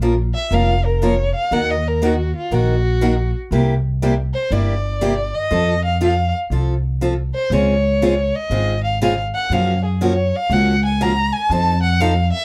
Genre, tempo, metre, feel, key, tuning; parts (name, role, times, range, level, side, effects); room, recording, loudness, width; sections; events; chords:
acoustic string swing (jazz manouche); 120 BPM; 4/4; swing 64% on 8ths; A4 = 441 Hz
picked steel-string acoustic guitar; accompaniment; 0.0-12.1 s; C3 to Bb4; -23 LUFS; equal
upright bass; bass; 0.0-12.3 s; F1 to Gb2; -21 LUFS; equal
warm violin; melody; 0.3-12.4 s; F4 to Bb5; -23 LUFS; equal
light reverb; dark, warm production; -18 LUFS; mono
0.0-12.4 A section
violin solo 0.0-12.4
0.0 Bbm; 1.5 Ebm; 3.5 C7; 5.5 F; 7.5 Dbmaj7; 9.5 Gbmaj7; 11.5 F7